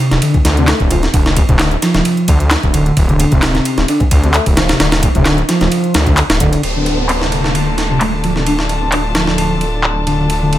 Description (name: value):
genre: breakbeat, breaks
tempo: 131 BPM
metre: 4/4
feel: swing 53% on 16ths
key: D minor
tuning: A4 = 441 Hz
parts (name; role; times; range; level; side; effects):
- overdriven synth lead; riff; 0.0-10.6 s; C3 to A3; -17 LUFS; equal; lush chorus, ping-pong delay
- detuned saw bass; bass; 0.1-10.6 s; D1 to D2; -16 LUFS; equal; none
- breakbeat sampler-style drum kit; drums; 0.1-10.6 s; kick drum, ride cymbal, snare drum; -15 LUFS; equal; high-pass filter on kick, high-pass filter on snare, high-pass filter on cymbals, high-pass filter on room
- garage drum kit; drums; 0.1-9.9 s; handclaps, hi-hat; -19 LUFS; equal; low-pass filter on hats, low-pass filter on snare, low-pass filter on room
- congas; percussion; 0.3-5.7 s; none; -23 LUFS; left 1 dB; none
- warm chamber string section; sustained chords; 6.6-10.6 s; D3 to A5; -21 LUFS; left 2 dB; sidechain pumping
- downlifter; sound effects; 6.6-10.3 s; none; -23 LUFS; right 1 dB; none
room: light reverb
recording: none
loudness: -11 LUFS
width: side -13 dB against mid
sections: 0.0-6.6 A section; 6.6-10.6 B section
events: filter sweep on analog synth lead 0.0-6.6, 6.6-10.6; filter sweep on drum 6.6-10.6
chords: 0.0 Dm